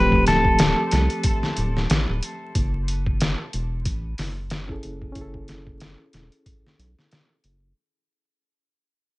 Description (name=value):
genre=trip hop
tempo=92 BPM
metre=4/4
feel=swing 57% on 16ths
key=unclear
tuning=A4 = 440 Hz
part: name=clean lap steel guitar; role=melody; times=0.0-2.2 s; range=A4 to B4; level=-24 LUFS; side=equal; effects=dub echo
part: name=reed electric piano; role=accompaniment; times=0.0-7.8 s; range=F3 to A4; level=-26 LUFS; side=equal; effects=harmonic tremolo, tape echo
part: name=round analog bass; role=bass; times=0.0-7.7 s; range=D1 to C2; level=-26 LUFS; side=equal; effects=none
part: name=trip hop sampler-style drum kit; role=drums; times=0.1-7.6 s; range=hi-hat, kick drum, snare drum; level=-24 LUFS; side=equal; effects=none
room=light reverb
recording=vinyl crackle, nothing above 10.4 kHz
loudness=-20 LUFS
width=side -20 dB against mid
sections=0.0-7.8 A section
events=fade-out 0.0-7.8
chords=0.0 Dm7; 2.5 F#m7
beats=0.59 1.24 1.89 | 2.54 3.20 3.85 4.50 | 5.15 5.80 6.46 7.11